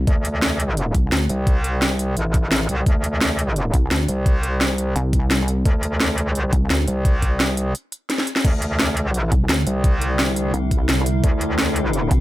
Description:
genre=dark technical drum and bass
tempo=172 BPM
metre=4/4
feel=straight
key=unclear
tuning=A4 = 440 Hz
part: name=pulsing pluck wobble bass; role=bass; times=0.0-1.3, 3.7-6.9, 9.3-12.2 s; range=C2 to D2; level=-20 LUFS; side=equal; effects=chorus
part: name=metallic wobble bass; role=bass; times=0.1-12.1 s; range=A1 to D2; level=-21 LUFS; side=equal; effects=chorus, overdrive
part: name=drum and bass drum kit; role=drums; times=0.1-12.2 s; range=crash cymbal, hi-hat, snare drum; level=-21 LUFS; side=equal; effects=none
part: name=electronic kick drum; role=drums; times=0.1-12.2 s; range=none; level=-18 LUFS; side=equal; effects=none
part: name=metallic inharmonic drone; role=sustained chords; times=9.7-12.2 s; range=D3 to E4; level=-27 LUFS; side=equal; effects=chorus, built-in reverb, sidechain pumping
room=little or no reverb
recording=none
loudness=-17 LUFS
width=side -16 dB against mid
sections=0.0-12.2 A section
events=break 7.7-8.4; drum fill 8.1-8.4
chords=0.0 D5

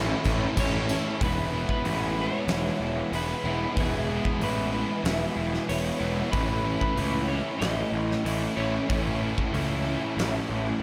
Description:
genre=rock, shoegaze and dream pop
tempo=94 BPM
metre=4/4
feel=straight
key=E major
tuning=A4 = 440 Hz
part: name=electric guitar at the edge of break-up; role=melody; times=0.0-10.5 s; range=G#4 to D#5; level=-36 LUFS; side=equal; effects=analog delay
part: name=fingerpicked twelve-string acoustic guitar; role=arpeggios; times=0.0-10.8 s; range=B3 to A4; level=-42 LUFS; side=equal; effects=none
part: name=overdriven electric guitar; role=riff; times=0.0-10.8 s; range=E2 to E4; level=-36 LUFS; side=equal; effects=ensemble chorus
part: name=overdriven electric guitar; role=riff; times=0.0-10.8 s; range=A2 to E4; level=-35 LUFS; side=equal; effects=reverse reverb
part: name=raw garage guitar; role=riff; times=0.0-10.8 s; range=A2 to E4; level=-36 LUFS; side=equal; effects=overdrive
part: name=fuzz picked electric bass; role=bass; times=0.0-10.8 s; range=E1 to C#2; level=-33 LUFS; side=equal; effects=overdrive
part: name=tambourine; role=percussion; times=0.2-1.0 s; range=none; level=-45 LUFS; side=equal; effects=none
part: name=huge arena drum kit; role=drums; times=0.3-10.3 s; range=crash cymbal, hi-hat, kick drum, snare drum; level=-34 LUFS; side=equal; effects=none
room=light reverb, studio reverb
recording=none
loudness=-27 LUFS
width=mono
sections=0.0-1.2 A section; 1.2-10.8 B section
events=none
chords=0.0 A; 1.2 E; 6.3 A

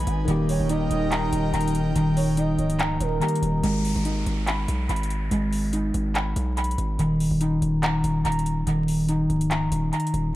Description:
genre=hip hop, trap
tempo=143 BPM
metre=4/4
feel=half-time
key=G# harmonic minor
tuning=A4 = 439 Hz
part: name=barky tine electric piano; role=accompaniment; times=0.0-3.7 s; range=D#3 to G#4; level=-30 LUFS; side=left 4 dB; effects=auto-pan, low-pass filter, tape echo
part: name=airy breathy pad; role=sustained chords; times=0.0-3.6 s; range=D#4 to G#5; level=-32 LUFS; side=right 3 dB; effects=chorus
part: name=mellow electric guitar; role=arpeggios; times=0.0-10.3 s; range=D#3 to B5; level=-24 LUFS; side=equal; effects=low-pass filter, tape echo
part: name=distorted 808-style bass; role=bass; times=0.0-10.3 s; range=C#1 to B1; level=-27 LUFS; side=equal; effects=distortion
part: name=trap drum kit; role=drums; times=0.0-10.2 s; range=handclaps, hi-hat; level=-32 LUFS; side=equal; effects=overdrive, tape echo
part: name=gliding portamento lead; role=second line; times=0.5-3.6 s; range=A#4 to D#5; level=-33 LUFS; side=right 6 dB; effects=chorus, tape echo
part: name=downlifter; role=sound effects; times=3.6-7.0 s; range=none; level=-38 LUFS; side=left 1 dB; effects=none
room=light reverb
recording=echo-heavy mix, vinyl crackle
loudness=-21 LUFS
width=side -15 dB against mid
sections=0.0-3.6 A section; 3.6-10.4 B section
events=none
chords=0.3 D#; 3.6 G#m; 7.0 D#5

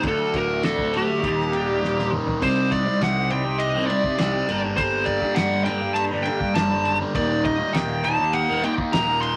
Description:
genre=psychedelic rock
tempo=101 BPM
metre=4/4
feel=straight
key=unclear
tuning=A4 = 443 Hz
part: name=overdriven combo organ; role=sustained chords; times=0.0-9.4 s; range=F#3 to A4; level=-33 LUFS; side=equal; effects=spring reverb
part: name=fuzz guitar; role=riff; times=0.0-9.4 s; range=D2 to F#4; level=-27 LUFS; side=equal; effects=distortion, phaser
part: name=fuzz fingered electric bass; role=bass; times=0.0-9.4 s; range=D1 to G2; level=-34 LUFS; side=equal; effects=overdrive
part: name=damped 70s drum kit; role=drums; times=0.0-9.4 s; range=crash cymbal, kick drum, ride cymbal, snare drum, toms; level=-32 LUFS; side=equal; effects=none
part: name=fuzz lead guitar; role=melody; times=0.1-9.4 s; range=G4 to C6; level=-26 LUFS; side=equal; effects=distortion
room=wet studio reverb, RT60 0.5 s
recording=vinyl crackle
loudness=-22 LUFS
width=mono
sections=0.0-2.4 A section; 2.4-9.4 B section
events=drum fill 1.8-2.4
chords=0.0 D; 1.2 Eb; 2.4 Cmadd9; 4.5 Gmadd9; 7.1 Eb

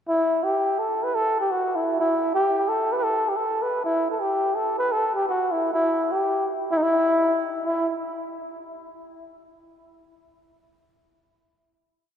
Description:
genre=klezmer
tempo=126 BPM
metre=2/4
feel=straight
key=E minor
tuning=A4 = 441 Hz
part: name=breathy cornet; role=solo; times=0.1-7.9 s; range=D#4 to B4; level=-21 LUFS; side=equal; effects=none
room=wet cathedral reverb, RT60 4.4 s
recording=recorded in a church or concert hall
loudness=-21 LUFS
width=side -8 dB against mid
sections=0.1-7.6 A section; 7.6-8.6 final note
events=none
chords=none

